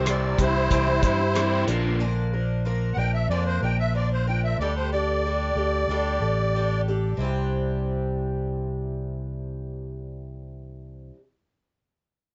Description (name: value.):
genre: folk rock and heartland rock.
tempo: 93 BPM.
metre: 4/4.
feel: straight.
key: C mixolydian.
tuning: A4 = 439 Hz.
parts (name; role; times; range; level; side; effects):
musette accordion; melody; 0.0-6.8 s; E4 to G5; -28 LUFS; equal; none.
picked twelve-string acoustic guitar; accompaniment; 0.0-11.2 s; Bb2 to Bb4; -34 LUFS; equal; none.
raw garage guitar; riff; 0.0-2.0 s; Bb2 to F4; -32 LUFS; equal; overdrive, phaser.
fingered electric bass; bass; 0.0-11.1 s; A1 to G2; -28 LUFS; equal; none.
cloth-damped thuddy drum kit; drums; 0.1-1.8 s; hi-hat, kick drum, rim click; -27 LUFS; equal; none.
room: light reverb.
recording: worn, warbling old tape, cassette tape, warbly pitch drift, nothing above 7.8 kHz.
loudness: -25 LUFS.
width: mono.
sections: 0.0-7.2 A section; 7.2-9.8 B section.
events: accordion solo 0.0-7.2.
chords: 0.0 Cadd9; 1.7 Bb; 4.6 Dsus4; 7.2 Cadd9.